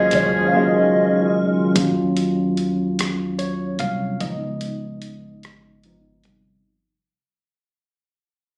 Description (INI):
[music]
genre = slow six-eight R&B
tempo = 49 BPM (dotted quarters)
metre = 6/8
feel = straight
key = Eb minor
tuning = A4 = 439 Hz
[part]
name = hollow clarinet-like synth lead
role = melody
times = 0.0-1.5 s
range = Db5 to F5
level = -23 LUFS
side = equal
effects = chorus, tape echo
[part]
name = tine electric piano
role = accompaniment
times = 0.0-6.7 s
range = Eb3 to F5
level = -23 LUFS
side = equal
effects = none
[part]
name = tonewheel organ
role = sustained chords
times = 0.0-1.7 s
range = Db3 to F4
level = -30 LUFS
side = equal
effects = overdrive, chorus vibrato, slow rotary speaker
[part]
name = warm horn section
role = stabs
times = 0.0-1.3 s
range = F3 to Ab4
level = -24 LUFS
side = equal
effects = none
[part]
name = fingered electric bass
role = bass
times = 0.0-6.6 s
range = C2 to Eb2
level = -29 LUFS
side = equal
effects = none
[part]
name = dusty soul sampler-style drum kit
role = drums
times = 0.1-6.4 s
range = hi-hat, kick drum, rim click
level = -28 LUFS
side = equal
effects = none
[sound]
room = light reverb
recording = recorded on a phone in the room, club reverb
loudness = -20 LUFS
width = mono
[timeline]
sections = 0.0-1.8 A section; 1.8-6.7 B section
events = silent gap 0.5-1.8; fade-out 1.8-6.7; tine electric piano solo 1.8-6.7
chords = 0.0 Ebm11; 1.8 Ebm9; 4.2 Db9